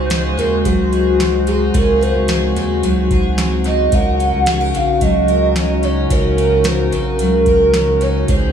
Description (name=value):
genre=dream pop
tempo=110 BPM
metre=4/4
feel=straight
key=unclear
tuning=A4 = 437 Hz
part: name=hollow clarinet-like synth lead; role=melody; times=0.0-8.5 s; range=Gb4 to Gb5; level=-17 LUFS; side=right 1 dB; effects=chorus, dub echo
part: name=warm analog pad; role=sustained chords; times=0.0-8.5 s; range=Db3 to C5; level=-21 LUFS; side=left 2 dB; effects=chorus
part: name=picked twelve-string acoustic guitar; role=arpeggios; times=0.0-8.5 s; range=Db3 to Bb4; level=-21 LUFS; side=left 2 dB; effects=wide subtle chorus, dub echo
part: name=round analog bass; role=bass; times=0.0-8.5 s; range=Bb1 to Eb2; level=-19 LUFS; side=equal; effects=none
part: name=booming analog drum machine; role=drums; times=0.1-8.5 s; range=hi-hat, kick drum, snare drum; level=-20 LUFS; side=right 1 dB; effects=dub echo
room=moderate plate reverb, RT60 1.5 s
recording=echo-heavy mix, studio reverb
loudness=-13 LUFS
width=side -8 dB against mid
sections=0.0-8.5 A section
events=none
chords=0.0 Ab7/Db; 3.9 Ebm7